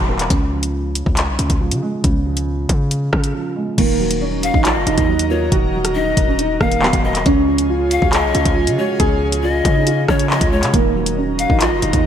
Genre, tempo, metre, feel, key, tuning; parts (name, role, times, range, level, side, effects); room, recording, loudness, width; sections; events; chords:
hip hop, drill; 138 BPM; 4/4; half-time; Eb minor; A4 = 444 Hz
felt-muted upright piano; accompaniment; 0.0-12.1 s; Db3 to Bb3; -24 LUFS; right 2 dB
hard-hitting 808-style bass; bass; 0.0-12.1 s; Eb1 to Db3; -21 LUFS; equal
drill drum kit; drums; 0.2-12.0 s; crash cymbal, handclaps, hi-hat, kick drum, rim click; -18 LUFS; equal; gated reverb
dark concert grand piano; melody; 3.8-12.1 s; Bb3 to Ab4; -19 LUFS; right 2 dB; wide subtle chorus
airy breathy pad; sustained chords; 3.8-12.1 s; F4 to Bb5; -27 LUFS; equal; chorus
breathy bright large pan pipes; second line; 4.4-12.1 s; Db5 to F5; -22 LUFS; left 5 dB; digital delay
moderate lush hall reverb, RT60 1.8 s, small room ambience; bright 1980s-style digital production; -14 LUFS; side -9 dB against mid
0.0-3.8 A section; 3.8-12.1 B section
break 3.3-3.8
0.3 Db; 3.8 Ebm; 7.3 Db; 10.7 Ebm